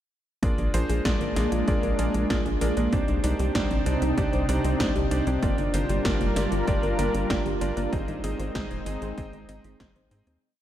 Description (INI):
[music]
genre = synthwave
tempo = 96 BPM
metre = 4/4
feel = straight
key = unclear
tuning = A4 = 439 Hz
[part]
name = lush unison pad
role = sustained chords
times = 0.9-10.4 s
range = C3 to Bb4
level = -30 LUFS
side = right 1 dB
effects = chorus, sidechain pumping
[part]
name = thumb-piano-like synth pluck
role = arpeggios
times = 0.4-10.4 s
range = Bb3 to Eb5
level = -33 LUFS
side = left 2 dB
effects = chorus, cassette tape, analog delay
[part]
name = clear electric grand piano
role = stabs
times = 0.4-10.4 s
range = C4 to Eb5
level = -31 LUFS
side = right 1 dB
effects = vintage 12-bit sampler grit, analog delay
[part]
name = tight sequencer bass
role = bass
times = 0.4-10.4 s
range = Eb1 to Ab2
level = -28 LUFS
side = equal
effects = sidechain pumping
[part]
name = 80s electronic pad drums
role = drums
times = 0.4-10.4 s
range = hi-hat, snare drum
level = -34 LUFS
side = right 1 dB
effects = overdrive
[part]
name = electronic kick drum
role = drums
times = 0.4-9.9 s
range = none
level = -30 LUFS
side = equal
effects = overdrive
[sound]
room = moderate cathedral reverb, RT60 6.2 s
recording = dreamy mix soaked in reverb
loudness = -23 LUFS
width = side -11 dB against mid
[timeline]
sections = 0.4-10.4 verse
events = filter sweep on synth arpeggio sound 0.4-10.4; fade-out 7.1-10.4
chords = 0.4 Bb7; 2.9 Cmadd9; 5.4 Gm7; 7.9 Ab